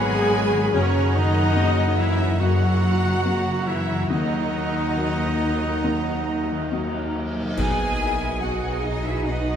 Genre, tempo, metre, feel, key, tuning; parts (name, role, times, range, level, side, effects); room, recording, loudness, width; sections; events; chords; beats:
cinematic, emotional film score for orchestra; 71 BPM; 4/4; rubato; B major; A4 = 440 Hz
warm symphonic violin section; melody; 0.0-9.6 s; D#4 to G#5; -33 LUFS; equal
bright flute section; second line; 0.0-9.6 s; D#5 to B5; -32 LUFS; right 1 dB
clear cor anglais; second line; 0.0-9.6 s; C#4 to F#5; -33 LUFS; right 4 dB
dark clarinet; second line; 0.0-9.6 s; F#4 to F#5; -33 LUFS; left 2 dB
warm symphonic violin section; second line; 0.0-9.6 s; C#5 to G#5; -34 LUFS; left 2 dB
dark symphonic viola section; accompaniment; 0.0-9.6 s; B3 to G#4; -29 LUFS; left 2 dB
felt-muted upright piano; accompaniment; 0.0-9.6 s; F#1 to F#4; -28 LUFS; left 3 dB
mellow French horn section; sustained chords; 0.0-9.6 s; C#4 to G#4; -30 LUFS; right 1 dB
concert harp; arpeggios; 0.0-9.6 s; F#2 to F#5; -32 LUFS; equal
rich symphonic cello section; bass; 0.0-9.6 s; C#3 to E4; -31 LUFS; equal
warm symphonic double bass section; bass; 0.0-9.6 s; G#1 to F#2; -26 LUFS; right 1 dB
cymbal swell, clash cymbals and concert bass drum; percussion; 4.1-9.2 s; -32 LUFS; right 1 dB
wet huge ambient reverb, RT60 8.4 s; in a vast, echoing space; -20 LUFS; side -8 dB against mid
0.0-7.6 A section; 7.6-9.6 B section
band accent 7.6-8.4
0.0 G#m7; 0.7 F#; 4.1 D#m; 7.6 B
| 0.74 1.57 2.41 3.26 | 4.12 4.99 5.85 6.72 | 7.58 8.42 9.26